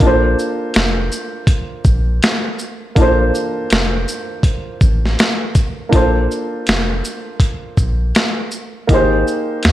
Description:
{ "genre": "lo-fi hip hop", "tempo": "81 BPM", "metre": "4/4", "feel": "swing 57% on 16ths", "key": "Bb major", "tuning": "A4 = 440 Hz", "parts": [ { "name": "dark upright piano", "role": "accompaniment", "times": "0.0-9.7 s", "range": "Bb3 to C5", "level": "-19 LUFS", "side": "equal", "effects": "none" }, { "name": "soft dub sub bass", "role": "bass", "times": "0.0-9.7 s", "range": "F1 to Eb2", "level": "-17 LUFS", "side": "equal", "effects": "none" }, { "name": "boom bap sampler-style drum kit", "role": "drums", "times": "0.0-9.7 s", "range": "hi-hat, kick drum, shaker, snare drum", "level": "-15 LUFS", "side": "equal", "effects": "none" } ], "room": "light reverb", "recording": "none", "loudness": "-14 LUFS", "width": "side -14 dB against mid", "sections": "0.0-5.9 A section; 5.9-9.7 B section", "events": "none", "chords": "0.0 Bbmaj9; 8.9 Abmaj9", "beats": "| 0.00 0.74 1.48 2.23 | 2.96 3.71 4.45 5.19 | 5.93 6.67 7.41 8.15 | 8.89 9.63" }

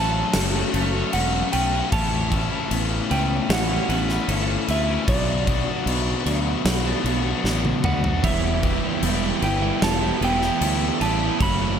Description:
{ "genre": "post-rock", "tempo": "76 BPM", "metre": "4/4", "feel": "straight", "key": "E dorian", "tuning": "A4 = 439 Hz", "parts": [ { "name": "clean lap steel guitar", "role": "melody", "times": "0.0-11.8 s", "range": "D5 to B5", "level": "-28 LUFS", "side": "right 3 dB", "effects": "slapback echo, tape echo" }, { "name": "electric guitar through a small old amp", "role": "arpeggios", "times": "0.0-11.8 s", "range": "E2 to G4", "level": "-31 LUFS", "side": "equal", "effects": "phaser, tape echo" }, { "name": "twelve-string electric guitar", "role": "arpeggios", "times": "0.0-11.8 s", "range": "A4 to C#6", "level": "-36 LUFS", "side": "right 8 dB", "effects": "tape echo" }, { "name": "cranked stack guitar", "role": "riff", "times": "0.0-11.8 s", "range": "A2 to G4", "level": "-27 LUFS", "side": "left 6 dB", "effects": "overdrive" }, { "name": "fuzz fingered electric bass", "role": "bass", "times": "0.0-11.8 s", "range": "E1 to D2", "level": "-25 LUFS", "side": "equal", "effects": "overdrive" }, { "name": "huge arena drum kit", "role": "drums", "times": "0.3-11.6 s", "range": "crash cymbal, kick drum, snare drum, toms", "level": "-25 LUFS", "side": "equal", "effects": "none" }, { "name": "sludgy distorted guitar", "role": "riff", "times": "8.2-11.8 s", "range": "E3 to F#4", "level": "-26 LUFS", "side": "right 12 dB", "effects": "overdrive" } ], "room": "moderate lush hall reverb, RT60 2.9 s", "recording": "big arena sound", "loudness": "-19 LUFS", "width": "side -8 dB against mid", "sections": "0.0-11.8 A section", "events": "drum fill 7.4-8.2", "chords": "0.0 F#m; 1.9 Aadd9; 5.1 Bm; 8.2 Em", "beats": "0.34 1.13 | 1.92 2.71 3.50 4.29 | 5.08 5.87 6.66 7.45 | 8.24 9.03 9.82 10.61 | 11.41" }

